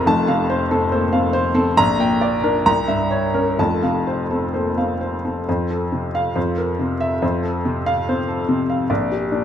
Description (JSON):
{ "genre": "classical, romantic character piece for solo piano", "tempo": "62-73 BPM", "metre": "2/4", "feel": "rubato", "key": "F major", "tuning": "A4 = 440 Hz", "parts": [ { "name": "clear upright piano", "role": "solo", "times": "0.0-9.4 s", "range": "F1 to Bb5", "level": "-17 LUFS", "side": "equal", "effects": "none" } ], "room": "wet recital hall reverb, RT60 1.4 s", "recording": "none", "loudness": "-17 LUFS", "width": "side -9 dB against mid", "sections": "0.0-5.5 A section; 5.5-9.4 B section", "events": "none", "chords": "0.1 F; 1.8 Gm/Bb; 2.6 C7b9; 3.6 F; 6.4 C7/F; 7.2 F; 8.9 Gm/Bb" }